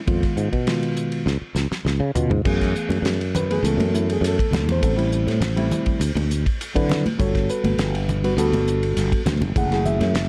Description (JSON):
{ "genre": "electric jazz fusion", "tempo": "101 BPM", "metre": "4/4", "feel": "straight", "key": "F# minor", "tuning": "A4 = 440 Hz", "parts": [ { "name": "mellow reed electric piano", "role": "accompaniment", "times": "0.1-10.3 s", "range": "D3 to F#5", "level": "-26 LUFS", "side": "equal", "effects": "none" }, { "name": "sustaining fretless electric bass", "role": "bass", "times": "0.1-10.3 s", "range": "F#1 to D3", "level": "-25 LUFS", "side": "equal", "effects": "none" }, { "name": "damped 70s drum kit", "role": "drums", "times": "0.1-10.3 s", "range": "crash cymbal, hi-hat, kick drum, ride cymbal, snare drum, toms", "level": "-28 LUFS", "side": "equal", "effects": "none" }, { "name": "congas", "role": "percussion", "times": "2.9-10.1 s", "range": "none", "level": "-30 LUFS", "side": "equal", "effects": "none" } ], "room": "light reverb, small room reverb", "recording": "dark, warm production", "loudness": "-21 LUFS", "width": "mono", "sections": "0.0-2.5 A section; 2.5-10.3 B section", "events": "drum fill 1.3-2.5", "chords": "0.1 Fm7b5; 1.3 Db7b9; 2.5 F#m11; 4.8 Am7; 6.0 D13; 7.2 Gmaj9; 9.6 F#m9" }